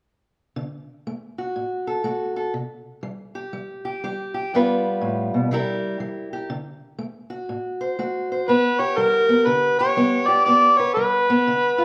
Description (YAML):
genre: acoustic country blues, solo or duo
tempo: 122 BPM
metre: 4/4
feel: swing 64% on 8ths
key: unclear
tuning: A4 = 436 Hz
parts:
  - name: fingerpicked steel-string acoustic guitar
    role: accompaniment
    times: 0.6-11.8 s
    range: G2 to C5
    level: -26 LUFS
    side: equal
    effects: none
  - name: overdriven harmonica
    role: melody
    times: 8.5-11.8 s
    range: Bb4 to D5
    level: -19 LUFS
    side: equal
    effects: none
room: moderate large studio reverb, RT60 1.2 s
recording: band playing live in one room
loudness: -21 LUFS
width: mono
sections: 0.6-8.5 A section; 8.5-11.8 B section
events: none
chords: 0.6 D; 2.5 C5; 4.5 G7; 5.5 C7; 6.5 D7; 8.5 G